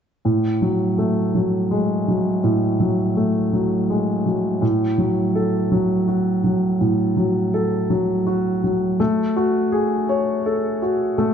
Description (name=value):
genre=pop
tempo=55 BPM (dotted quarters)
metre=6/8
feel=straight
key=unclear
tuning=A4 = 440 Hz
part: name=warm concert grand piano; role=accompaniment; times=0.2-11.3 s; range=A2 to C#5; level=-18 LUFS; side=equal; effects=none
room=wet recital hall reverb, RT60 1.5 s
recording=nothing above 7.9 kHz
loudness=-18 LUFS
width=side -8 dB against mid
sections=0.3-9.0 A section; 9.0-11.3 B section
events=none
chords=0.3 F#madd9/A; 4.6 F#m/A; 9.0 F#madd9/A